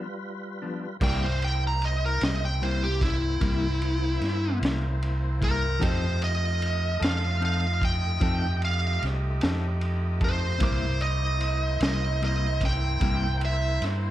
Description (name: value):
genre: slow blues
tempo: 50 BPM (dotted quarters)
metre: 12/8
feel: straight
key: C mixolydian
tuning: A4 = 439 Hz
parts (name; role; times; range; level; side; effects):
- clean electric guitar; accompaniment; 0.0-13.3 s; C3 to A4; -32 LUFS; left 4 dB; harmonic tremolo
- warm upright piano; accompaniment; 0.0-14.1 s; E4 to D6; -43 LUFS; right 7 dB; none
- tonewheel organ; sustained chords; 0.0-14.1 s; G3 to Eb5; -39 LUFS; equal; slow rotary speaker, overdrive, chorus vibrato
- smooth overdriven lead guitar; melody; 1.0-13.8 s; E4 to Bb5; -29 LUFS; right 1 dB; none
- warm saxophone section; sustained chords; 1.0-14.1 s; A3 to G4; -40 LUFS; right 1 dB; none
- fingered electric bass; bass; 1.0-14.1 s; C2 to G2; -26 LUFS; equal; none
- crunchy breakbeat drum kit; drums; 1.0-14.0 s; crash cymbal, kick drum, ride cymbal, snare drum; -30 LUFS; equal; none
room: light reverb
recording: none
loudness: -23 LUFS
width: side -13 dB against mid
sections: 0.0-1.0 A section; 1.0-14.1 B section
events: break 0.0-1.0; lead electric guitar solo 1.0-14.1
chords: 0.0 G7; 1.0 C7; 5.8 F7; 10.6 C7